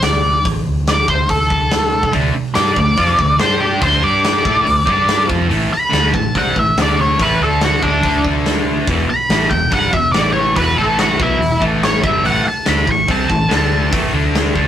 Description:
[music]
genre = blues rock power trio and southern rock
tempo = 142 BPM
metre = 4/4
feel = straight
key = unclear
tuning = A4 = 435 Hz
[part]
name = octave-fuzz lead guitar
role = melody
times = 0.0-13.9 s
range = D4 to C#6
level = -16 LUFS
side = equal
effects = wah, distortion
[part]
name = vintage muted fingered electric bass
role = bass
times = 0.0-14.7 s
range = E1 to A2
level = -21 LUFS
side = equal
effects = none
[part]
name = big rock drum kit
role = drums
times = 0.0-14.7 s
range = hi-hat, kick drum, snare drum, toms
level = -19 LUFS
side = equal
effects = none
[part]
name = distorted electric guitar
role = riff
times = 2.1-14.7 s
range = E2 to A4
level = -18 LUFS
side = equal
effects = distortion
[sound]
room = moderate studio reverb, RT60 0.6 s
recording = rough rehearsal-room recording, tube saturation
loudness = -12 LUFS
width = side -10 dB against mid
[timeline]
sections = 0.0-14.7 A section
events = drum fill 1.9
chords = 0.0 N.C.; 0.7 D5; 3.4 G5; 3.8 D5; 4.0 G5; 4.5 D5; 4.9 G5; 5.3 F5; 5.5 A5; 6.8 D5; 7.2 A5; 7.4 D5; 8.9 E5; 10.1 A5; 10.6 E5; 10.8 A5; 11.2 E5; 11.6 A5; 12.0 Em7/G; 12.2 A5; 13.5 D5; 13.9 A5; 14.1 D5

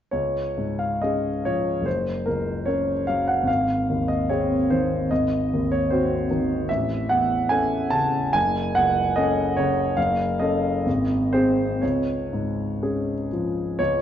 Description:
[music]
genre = classical, romantic character piece for solo piano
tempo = 60-77 BPM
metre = 2/4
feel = rubato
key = Db major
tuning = A4 = 440 Hz
[part]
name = clear grand piano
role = solo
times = 0.1-14.0 s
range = Gb1 to A5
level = -20 LUFS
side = equal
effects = none
[sound]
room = wet recital hall reverb, RT60 1.6 s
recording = dark, warm production, nothing above 7.7 kHz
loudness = -21 LUFS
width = side -10 dB against mid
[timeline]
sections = 0.1-13.8 A section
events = none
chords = 0.1 Db; 1.9 Gb; 3.5 Ab; 5.1 Ab7; 6.7 A; 8.3 Gbm; 10.9 Ab; 11.8 Db

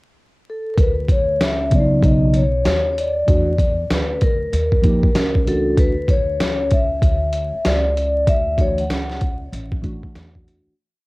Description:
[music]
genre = hip hop, jazz-hop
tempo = 96 BPM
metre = 4/4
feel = swing 63% on 16ths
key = D major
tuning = A4 = 439 Hz
[part]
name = vibraphone with soft mallets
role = melody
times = 0.5-9.4 s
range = A4 to F#5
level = -21 LUFS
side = left 1 dB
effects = cassette tape, tape echo
[part]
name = upright bass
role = bass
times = 0.8-10.7 s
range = A1 to E2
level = -23 LUFS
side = equal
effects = transformer saturation
[part]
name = boom bap sampler-style drum kit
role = drums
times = 0.8-10.7 s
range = hi-hat, kick drum, snare drum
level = -18 LUFS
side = equal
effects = cassette tape
[part]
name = mellow tine electric piano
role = accompaniment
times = 1.7-10.7 s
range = C#3 to G4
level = -19 LUFS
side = equal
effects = phaser, cassette tape
[sound]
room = moderate studio reverb, RT60 0.6 s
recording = home recording on cassette, vinyl crackle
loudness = -16 LUFS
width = side -22 dB against mid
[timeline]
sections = 0.0-0.8 pickup bar; 0.8-10.8 A section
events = fade-out 8.3-10.8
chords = 0.0 N.C.; 0.8 Dmaj7; 2.0 B; 3.3 D69; 4.5 Eb9; 5.8 Dmaj7

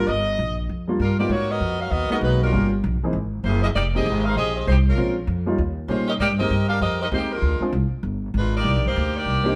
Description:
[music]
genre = jazz, big band swing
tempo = 196 BPM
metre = 4/4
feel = swing 62% on 8ths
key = unclear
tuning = A4 = 445 Hz
[part]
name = warm saxophone section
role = melody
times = 0.0-9.6 s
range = Gb3 to F5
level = -26 LUFS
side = equal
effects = none
[part]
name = warm grand piano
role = accompaniment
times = 0.0-9.6 s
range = Ab2 to Ab4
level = -28 LUFS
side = equal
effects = none
[part]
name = upright bass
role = bass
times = 0.0-9.6 s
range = F1 to Bb2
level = -24 LUFS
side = equal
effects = none
[sound]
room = moderate stone room reverb, RT60 1.1 s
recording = band playing live in one room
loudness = -22 LUFS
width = mono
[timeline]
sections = 0.0-1.3 A section; 1.3-9.6 B section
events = none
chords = 0.0 Ebmaj9; 1.3 Abm9; 2.5 Gm7b5; 3.1 Gb9; 3.7 Fm11; 5.0 Bbm9; 5.6 Eb9; 6.2 Abmaj9; 7.4 Dm7b5; 8.0 G5; 8.6 Cm9

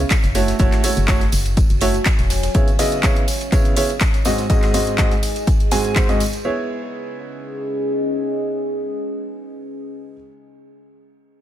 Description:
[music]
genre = piano house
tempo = 123 BPM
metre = 4/4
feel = swing 54% on 16ths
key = C# minor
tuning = A4 = 440 Hz
[part]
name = organ-like FM bass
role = bass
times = 0.0-2.5 s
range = E1 to F#1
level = -21 LUFS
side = equal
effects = sidechain pumping
[part]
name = deep dark ambient pad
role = texture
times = 0.0-10.3 s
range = C#4 to G#5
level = -26 LUFS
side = equal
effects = chorus, built-in reverb, sidechain pumping
[part]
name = deep reggae drum kit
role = drums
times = 0.1-6.4 s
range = ride cymbal, snare drum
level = -36 LUFS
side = right 4 dB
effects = sidechain pumping on cymbals, high-pass filter on cymbals, high-pass filter on snare, high-pass filter on room
[part]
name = electronic kick drum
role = drums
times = 0.1-6.1 s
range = none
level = -18 LUFS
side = equal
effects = none
[part]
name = house drum kit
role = drums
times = 0.1-6.4 s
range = handclaps, hi-hat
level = -24 LUFS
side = left 1 dB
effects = none
[part]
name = tambourine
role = percussion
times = 0.1-6.4 s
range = none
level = -32 LUFS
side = right 4 dB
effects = none
[part]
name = clear baby grand piano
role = riff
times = 0.4-10.1 s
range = G#2 to G#5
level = -22 LUFS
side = right 2 dB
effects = vintage 12-bit sampler grit, sidechain pumping, dub echo
[sound]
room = small room reverb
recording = none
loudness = -16 LUFS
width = side -12 dB against mid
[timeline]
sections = 0.0-6.4 A section; 6.4-10.4 B section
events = none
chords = 0.4 F#m7; 2.5 C#m7; 4.3 G#7; 6.4 C#m7

